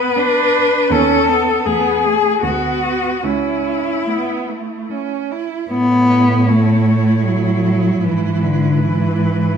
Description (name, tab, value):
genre	classical, lyrical piece for cello ensemble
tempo	72-82 BPM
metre	3/4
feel	rubato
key	A major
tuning	A4 = 443 Hz
part	warm cello	melody	0.0-9.6 s	E4 to C#5	-18 LUFS	left 5 dB	none
part	rich cello	second line	0.0-9.6 s	A3 to E4	-21 LUFS	right 8 dB	none
part	warm cello	accompaniment	0.2-9.6 s	D3 to B3	-17 LUFS	left 2 dB	none
part	warm cello	bass	0.9-9.6 s	C#2 to A2	-20 LUFS	right 3 dB	none
room	wet recital hall reverb, RT60 1.4 s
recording	minimal, uncompressed stereo recording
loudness	-14 LUFS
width	side -7 dB against mid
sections	0.0-5.7 A section; 5.7-9.6 A section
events	none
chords	0.0 Bm; 0.9 B7/D#; 1.7 A5/E; 2.4 Bm6/D; 3.2 A/C#; 5.7 A; 8.0 E/G#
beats	0.16 | 0.91 1.67 2.44 | 3.24 4.07 4.89 | 5.71 6.49 7.27 | 8.04 8.81 9.56